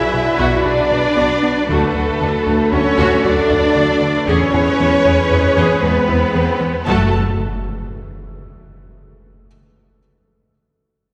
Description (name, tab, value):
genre	cinematic, hybrid orchestral and electronic film score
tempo	116 BPM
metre	5/4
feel	straight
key	F# minor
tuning	A4 = 443 Hz
part	dark symphonic violin section	melody	0.0-7.2 s	A4 to A5	-26 LUFS	equal	none
part	dark symphonic violin section	second line	0.0-7.2 s	A4 to A5	-25 LUFS	equal	none
part	rich symphonic viola section	accompaniment	0.0-7.2 s	D4 to B4	-25 LUFS	equal	none
part	evolving wavetable pad	sustained chords	0.0-7.2 s	E3 to B4	-29 LUFS	equal	none
part	mellow French horn section	sustained chords	0.0-7.1 s	F#4 to D5	-25 LUFS	equal	none
part	soft round pluck	arpeggios	0.0-6.5 s	D3 to B4	-30 LUFS	equal	none
part	round analog bass	riff	0.0-6.8 s	D2 to B3	-26 LUFS	equal	none
part	rich symphonic cello section	bass	0.0-7.2 s	A3 to E4	-21 LUFS	equal	none
part	clear baby grand piano	texture	0.0-6.9 s	G#4 to B5	-32 LUFS	equal	none
part	rich symphonic double bass section	bass	0.1-7.2 s	B1 to F#2	-24 LUFS	equal	none
part	swell and impact	sound effects	6.0-9.4 s	none	-29 LUFS	equal	none
room	wet scoring stage reverb, RT60 1.8 s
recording	heard from further back in the room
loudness	-15 LUFS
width	mono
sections	0.0-6.9 A section; 6.9-9.5 B section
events	impact 6.9-9.5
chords	0.0 Bm; 1.7 D; 4.3 E; 6.9 F#m